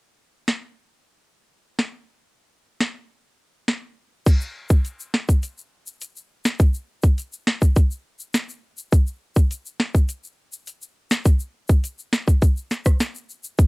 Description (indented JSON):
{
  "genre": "dancehall",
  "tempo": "103 BPM",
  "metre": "4/4",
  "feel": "straight",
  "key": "none",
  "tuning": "none",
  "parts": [
    { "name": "island pop drum kit", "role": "drums", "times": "0.5-13.7 s", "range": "crash cymbal, hi-hat, kick drum, rim click, snare drum", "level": "-17 LUFS", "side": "equal", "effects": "cassette tape" },
    { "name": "egg shaker", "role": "percussion", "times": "4.3-13.7 s", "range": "none", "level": "-37 LUFS", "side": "left 4 dB", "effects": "none" }
  ],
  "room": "little or no reverb",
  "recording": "home recording on cassette",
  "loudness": "-20 LUFS",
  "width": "side -30 dB against mid",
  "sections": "0.0-4.3 A section; 4.3-13.7 B section",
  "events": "kick muted 1.9-4.3",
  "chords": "none",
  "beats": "0.19 0.77 1.35 | 1.94 2.52 3.10 3.68 | 4.27 4.85 5.43 6.01 | 6.60 7.18 7.76 8.34 | 8.93 9.51 10.09 10.67 | 11.26 11.84 12.42 13.00 | 13.59"
}